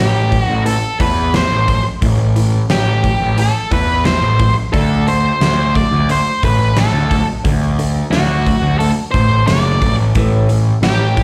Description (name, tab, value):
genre	quiet-loud alternative rock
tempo	88 BPM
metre	4/4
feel	straight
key	A dorian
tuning	A4 = 439 Hz
part	octave-fuzz lead guitar	melody	0.0-11.2 s	F#4 to D5	-20 LUFS	equal	distortion, slapback echo
part	electric guitar through a small old amp	arpeggios	0.0-11.2 s	A2 to D4	-26 LUFS	equal	slapback echo
part	fuzz picked electric bass	bass	0.0-11.2 s	F#1 to E2	-17 LUFS	equal	overdrive
part	big rock drum kit	drums	0.3-11.2 s	hi-hat, kick drum, snare drum	-21 LUFS	equal	none
room	studio ambience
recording	live gig heard through the venue's PA, club reverb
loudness	-14 LUFS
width	mono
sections	0.0-11.2 A section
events	none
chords	0.0 A5; 4.7 D5; 10.2 A5